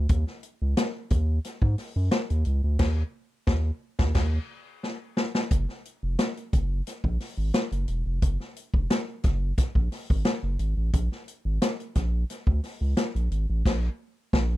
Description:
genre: funk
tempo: 88 BPM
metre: 4/4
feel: straight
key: unclear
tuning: A4 = 441 Hz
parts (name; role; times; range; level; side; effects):
- round analog bass; bass; 0.0-14.6 s; Fb1 to Ab2; -25 LUFS; equal; none
- swinging big-band drum kit; drums; 0.1-14.5 s; crash cymbal, hi-hat, kick drum, snare drum; -25 LUFS; equal; none
room: little or no reverb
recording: none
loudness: -24 LUFS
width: side -16 dB against mid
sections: 0.0-5.5 A section; 5.5-14.6 B section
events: band accent 2.8-5.5, 13.7-14.6; drum fill 4.8-5.5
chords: none

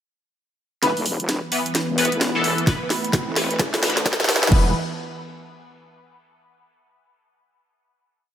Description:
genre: bass house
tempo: 130 BPM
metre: 4/4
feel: swing 62% on 16ths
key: unclear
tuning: A4 = 440 Hz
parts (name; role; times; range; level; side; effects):
- sweeping resonant pad; sustained chords; 0.8-4.7 s; E3 to B4; -28 LUFS; right 1 dB; chorus, sidechain pumping
- band-passed chord stab; stabs; 0.8-4.7 s; E3 to B4; -25 LUFS; left 2 dB; phaser, ensemble chorus, sidechain pumping, dub echo
- wobble bass; bass; 0.8-4.7 s; E1 to D2; -27 LUFS; equal; chorus, overdrive, sidechain pumping, high-pass filter
- garage drum kit; drums; 0.8-4.6 s; crash cymbal, hi-hat, snare drum; -22 LUFS; equal; none
- riser; sound effects; 1.7-4.5 s; none; -32 LUFS; equal; none
- electronic kick drum; drums; 2.7-4.6 s; none; -19 LUFS; equal; none
room: moderate lush hall reverb, RT60 1.9 s, digital ambience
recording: high-pass filter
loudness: -18 LUFS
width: side -10 dB against mid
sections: 0.8-4.5 build; 4.5-6.4 final chord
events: build-up 0.8-4.5; drum fill 0.8-4.5; riser 1.7-4.5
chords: 0.8 E5

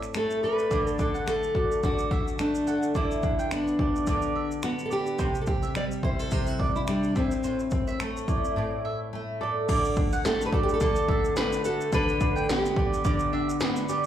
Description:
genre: acoustic pop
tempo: 107 BPM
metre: 4/4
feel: swing 55% on 16ths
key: G major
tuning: A4 = 440 Hz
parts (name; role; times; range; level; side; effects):
- nylon-string guitar; accompaniment; 0.0-14.1 s; A2 to A4; -29 LUFS; left 1 dB; double-tracked left and right, slapback echo
- 80s electronic pad drums; drums; 0.0-14.1 s; crash cymbal, finger snaps, kick drum, shaker, snare drum; -28 LUFS; equal; none
- fingerpicked steel-string acoustic guitar; melody; 0.2-13.9 s; C4 to D5; -28 LUFS; left 1 dB; tape echo
- mandolin; arpeggios; 0.4-14.0 s; C5 to G5; -33 LUFS; right 4 dB; slapback echo
room: wet club reverb, RT60 0.6 s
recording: live gig heard through the venue's PA, club reverb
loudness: -24 LUFS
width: side -10 dB against mid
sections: 0.0-9.7 A section; 9.7-14.1 B section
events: break 8.6-9.7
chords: 0.0 Am; 0.7 D; 3.0 Gadd9/D; 5.2 C; 7.2 Am; 9.7 D; 11.9 Gadd9/D

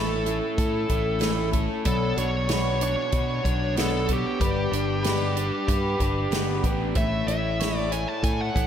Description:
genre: folk rock and heartland rock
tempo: 94 BPM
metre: 4/4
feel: straight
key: A major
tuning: A4 = 440 Hz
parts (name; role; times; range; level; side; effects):
- bluesy overdriven lead guitar; melody; 0.0-8.7 s; G4 to A5; -28 LUFS; equal; distortion
- picked twelve-string acoustic guitar; accompaniment; 0.0-8.7 s; A2 to C#5; -31 LUFS; left 4 dB; slapback echo
- crunchy overdriven guitar; riff; 0.0-8.7 s; B2 to C#5; -31 LUFS; right 1 dB; none
- picked electric bass; bass; 0.0-8.7 s; G1 to B2; -28 LUFS; equal; none
- natural country drum kit; drums; 0.3-8.7 s; hi-hat, kick drum, snare drum; -28 LUFS; equal; none
room: moderate lush hall reverb, RT60 1.7 s, small room ambience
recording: big arena sound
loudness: -22 LUFS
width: side -9 dB against mid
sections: 0.0-8.7 A section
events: none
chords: 0.0 A; 1.9 Bmadd9; 4.4 G; 7.0 A

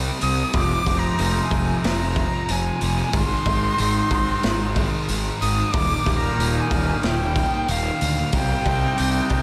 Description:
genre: rock, shoegaze and dream pop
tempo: 92 BPM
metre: 4/4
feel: straight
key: Eb major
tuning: A4 = 440 Hz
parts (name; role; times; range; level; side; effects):
- thick fuzz guitar; riff; 0.0-9.4 s; Eb2 to C4; -28 LUFS; equal; distortion, lush chorus
- twangy electric guitar; riff; 0.0-9.4 s; C3 to Eb4; -32 LUFS; equal; reverse reverb
- fuzz fingered electric bass; bass; 0.0-9.4 s; Eb1 to D2; -27 LUFS; equal; overdrive
- breathy bright jazz flute; melody; 0.2-9.4 s; F5 to Eb6; -28 LUFS; equal; delay
- raw garage drum kit; drums; 0.2-9.4 s; hi-hat, kick drum, snare drum; -28 LUFS; equal; none
room: moderate plate reverb, RT60 2.8 s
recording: dreamy mix soaked in reverb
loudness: -21 LUFS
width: mono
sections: 0.0-9.4 A section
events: none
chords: 0.0 Cmadd9; 0.5 Fm7; 3.1 Ab; 5.7 Eb; 8.3 Cmadd9

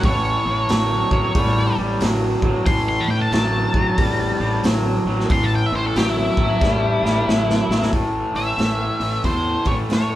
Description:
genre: blues rock power trio and southern rock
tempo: 91 BPM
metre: 4/4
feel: swing 64% on 8ths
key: A mixolydian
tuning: A4 = 440 Hz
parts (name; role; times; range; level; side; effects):
- raw garage guitar; riff; 0.0-10.2 s; A2 to A3; -22 LUFS; equal; overdrive
- growling fingered electric bass; bass; 0.0-10.2 s; A1 to A2; -24 LUFS; equal; overdrive
- raw garage drum kit; drums; 0.0-10.1 s; hi-hat, kick drum, snare drum; -22 LUFS; equal; none
- octave-fuzz lead guitar; melody; 0.1-10.2 s; E4 to C6; -23 LUFS; left 1 dB; distortion
room: moderate large studio reverb, RT60 1.4 s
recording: band playing live in one room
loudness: -17 LUFS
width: side -14 dB against mid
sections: 0.0-7.9 A section; 7.9-10.2 B section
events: lead electric guitar solo 0.0-7.9; drum fill 6.6-7.9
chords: 0.0 A; 7.9 A5

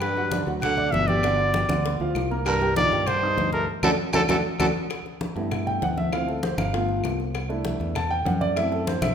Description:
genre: Afro-Cuban jazz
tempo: 196 BPM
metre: 4/4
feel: straight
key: G major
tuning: A4 = 440 Hz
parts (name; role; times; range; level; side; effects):
- warm trumpet; melody; 0.0-4.7 s; A4 to F#5; -24 LUFS; equal; none
- breathy baritone saxophone; second line; 0.0-4.7 s; F#2 to D3; -28 LUFS; right 2 dB; none
- warm grand piano; accompaniment; 0.0-9.1 s; D3 to Eb6; -27 LUFS; right 2 dB; none
- fingered electric bass; bass; 0.0-9.1 s; G1 to G2; -29 LUFS; left 1 dB; none
- bongos; percussion; 0.0-9.1 s; none; -35 LUFS; left 6 dB; none
- claves; percussion; 0.0-9.1 s; none; -36 LUFS; left 2 dB; none
- congas; percussion; 0.0-9.1 s; none; -31 LUFS; left 1 dB; none
room: wet large studio reverb, RT60 1.4 s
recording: minimal, uncompressed stereo recording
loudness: -22 LUFS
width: side -8 dB against mid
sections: 0.0-4.9 A section; 4.9-9.1 B section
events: band accent 3.7-4.9; grand piano solo 4.9-9.1; drum fill 8.9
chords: 0.0 Gmaj7; 1.2 G7; 2.5 Cm9; 3.7 D; 4.9 G6; 6.1 Dm7; 6.7 G7; 7.3 C6; 8.6 F#m7b5

